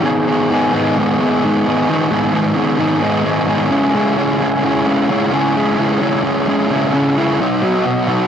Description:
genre	rock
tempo	131 BPM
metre	4/4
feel	straight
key	unclear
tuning	A4 = 443 Hz
part	fuzz guitar	solo	0.0-8.3 s	G#2 to G#4	-13 LUFS	equal	distortion
room	light reverb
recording	home recording on cassette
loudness	-13 LUFS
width	side -8 dB against mid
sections	0.0-7.4 A section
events	none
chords	0.1 G#m; 3.7 C#m; 7.4 B

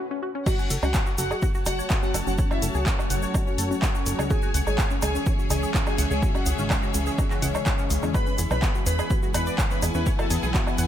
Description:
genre	melodic techno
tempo	125 BPM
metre	4/4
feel	straight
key	F# minor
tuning	A4 = 445 Hz
part	tight sequenced synth	arpeggios	0.0-10.8 s	C#4 to F#5	-33 LUFS	left 1 dB	chorus, sidechain pumping, digital delay
part	wide unison lead	melody	0.5-10.3 s	E4 to B4	-34 LUFS	equal	ping-pong delay
part	clear symphonic violin section	second line	0.5-10.3 s	E5 to B5	-36 LUFS	left 1 dB	sidechain pumping, digital delay
part	deep dark ambient pad	sustained chords	0.5-10.9 s	E3 to C#5	-35 LUFS	right 2 dB	chorus, built-in reverb, sidechain pumping
part	deep house drum kit	drums	0.5-10.9 s	crash cymbal, handclaps, hi-hat, woodblock	-30 LUFS	equal	overdrive, high-pass filter on snare, small room ambience, high-pass filter on perc, high-pass filter on hats, high-pass filter on cymbals, gated reverb
part	electronic kick drum	drums	0.5-10.6 s	none	-25 LUFS	equal	small room ambience
part	egg shaker	percussion	0.5-10.9 s	none	-37 LUFS	right 3 dB	none
part	rich studio string section	texture	0.5-10.9 s	C#4 to A5	-35 LUFS	left 2 dB	sidechain pumping
part	plucky analog bass	bass	0.7-10.9 s	F#1 to E2	-26 LUFS	equal	sidechain pumping
part	brassy analog pad	stabs	2.1-10.9 s	C#3 to F#4	-33 LUFS	left 2 dB	chorus, sidechain pumping, digital delay
room	little or no reverb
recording	bright 1980s-style digital production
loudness	-22 LUFS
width	side -10 dB against mid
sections	0.5-10.9 A section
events	break 0.0-0.5; drop 0.5-10.9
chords	0.5 F#m; 4.3 C#m; 8.1 E

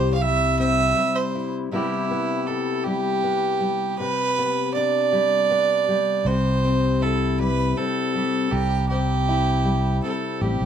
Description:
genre	acoustic folk duo or small band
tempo	79 BPM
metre	3/4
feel	straight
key	C major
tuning	A4 = 440 Hz
part	clear fiddle	second line	0.0-10.7 s	E4 to F5	-23 LUFS	right 6 dB	none
part	fingerpicked steel-string acoustic guitar	accompaniment	0.0-10.7 s	C3 to G4	-24 LUFS	left 5 dB	none
part	fingered electric bass	bass	0.0-0.9, 6.2-10.7 s	A1 to C2	-22 LUFS	equal	none
room	moderate studio reverb, RT60 0.5 s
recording	none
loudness	-20 LUFS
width	side -8 dB against mid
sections	0.0-1.7 A section; 1.7-10.7 B section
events	fiddle solo 0.0-1.7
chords	0.0 C; 1.7 Em/C; 4.0 G/C; 6.3 C

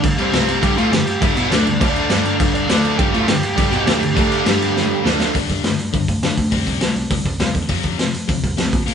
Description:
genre	punk rock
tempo	204 BPM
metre	4/4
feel	straight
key	G mixolydian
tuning	A4 = 440 Hz
part	crunchy overdriven guitar	riff	0.0-5.3 s	G2 to D4	-22 LUFS	right 6 dB	none
part	distorted electric guitar	riff	0.0-8.9 s	F2 to D4	-23 LUFS	left 8 dB	overdrive
part	dark cello	bass	0.0-8.9 s	C2 to D3	-22 LUFS	left 1 dB	none
part	raw garage drum kit	drums	0.0-8.9 s	crash cymbal, hi-hat, kick drum, snare drum	-18 LUFS	equal	none
part	smooth overdriven lead guitar	melody	0.2-5.0 s	C4 to G5	-24 LUFS	right 2 dB	none
room	light reverb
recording	band playing live in one room, nothing above 10.9 kHz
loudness	-15 LUFS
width	side -7 dB against mid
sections	0.0-5.3 A section; 5.3-8.9 B section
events	drum fill 4.8-5.3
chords	0.3 C5; 0.6 G; 1.8 D5; 2.1 G5; 2.7 D5; 3.0 G; 4.2 D5; 4.5 G5; 5.0 D5; 5.3 G5; 6.5 C; 7.7 F5

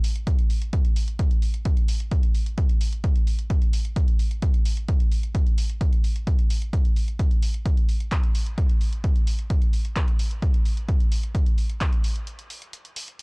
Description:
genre	techno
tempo	130 BPM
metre	4/4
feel	straight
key	none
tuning	none
part	punchy analog drum machine	drums	0.0-13.2 s	handclaps, hi-hat	-36 LUFS	equal	none
part	electronic kick drum	drums	0.3-11.9 s	none	-20 LUFS	equal	none
room	little or no reverb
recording	dry, gritty hardware recording, transformer saturation, cassette tape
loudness	-20 LUFS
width	side -39 dB against mid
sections	0.0-13.2 A section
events	break 12.3-13.2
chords	none

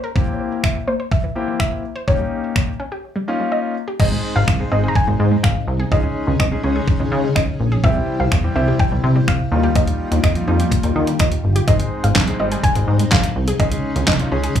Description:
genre	dance-pop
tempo	125 BPM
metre	4/4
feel	straight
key	unclear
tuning	A4 = 440 Hz
part	soft round pluck	melody	0.0-14.6 s	C5 to Bb5	-25 LUFS	equal	chorus, digital delay
part	wide unison pluck	arpeggios	0.0-14.5 s	C3 to C5	-29 LUFS	right 2 dB	sidechain pumping, digital delay
part	clear concert grand piano	accompaniment	0.2-14.6 s	G3 to Ab4	-24 LUFS	left 5 dB	sidechain pumping
part	detuned 8-bit digital drum machine	drums	0.2-14.6 s	crash cymbal, finger snaps, handclaps, hi-hat, kick drum, snare drum	-18 LUFS	equal	none
part	string machine, violins	sustained chords	4.0-14.6 s	C3 to Ab4	-26 LUFS	equal	ensemble chorus, sidechain pumping
part	plucky analog bass	bass	4.0-14.5 s	G1 to Eb3	-18 LUFS	equal	sidechain pumping
room	little or no reverb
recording	small room reverb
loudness	-16 LUFS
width	side -9 dB against mid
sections	0.0-4.0 A section; 4.0-14.6 B section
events	none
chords	0.2 C7; 2.1 Eb7; 4.0 Ab; 5.9 Dbsus2; 7.8 C; 9.5 Ebadd9; 11.7 Ab; 13.6 Dbsus2

